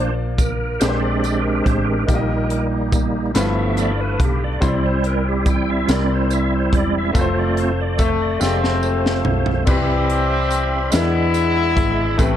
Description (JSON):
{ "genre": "slow gospel", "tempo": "48 BPM (dotted quarters)", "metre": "6/8", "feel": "straight", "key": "unclear", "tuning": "A4 = 444 Hz", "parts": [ { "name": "clear baby grand piano", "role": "accompaniment", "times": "0.0-12.4 s", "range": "G2 to Eb5", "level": "-25 LUFS", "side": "left 3 dB", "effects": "none" }, { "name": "bright tonewheel organ", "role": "sustained chords", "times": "0.0-12.4 s", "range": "F3 to B5", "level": "-22 LUFS", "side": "right 2 dB", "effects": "slow rotary speaker, overdrive, chorus vibrato" }, { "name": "hollow-body short-scale fingered electric bass", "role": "bass", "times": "0.0-12.4 s", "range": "E1 to E2", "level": "-22 LUFS", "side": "equal", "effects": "none" }, { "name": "crisp fusion drum kit", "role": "drums", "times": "0.4-12.4 s", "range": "crash cymbal, hi-hat, kick drum, snare drum, toms", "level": "-22 LUFS", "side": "equal", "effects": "none" }, { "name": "tambourine", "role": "percussion", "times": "0.4-12.4 s", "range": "none", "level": "-33 LUFS", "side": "right 9 dB", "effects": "none" }, { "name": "warm horn section", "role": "melody", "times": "8.0-12.4 s", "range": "C3 to E4", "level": "-20 LUFS", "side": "left 2 dB", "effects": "none" } ], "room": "light reverb, small room ambience", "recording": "dark, warm production", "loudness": "-16 LUFS", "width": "side -10 dB against mid", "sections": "0.0-9.7 A section; 9.7-12.4 B section", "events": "tonewheel organ solo 0.0-9.7; drum fill 8.4-9.7", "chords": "0.0 Bb; 0.8 Bb13; 2.1 Eb/Bb; 3.4 G13; 4.6 C; 7.2 F; 9.7 Cmaj7; 10.9 E7", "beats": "0.81 | 2.09 3.36 | 4.63 5.89 | 7.16 8.42 | 9.68 10.93 | 12.19" }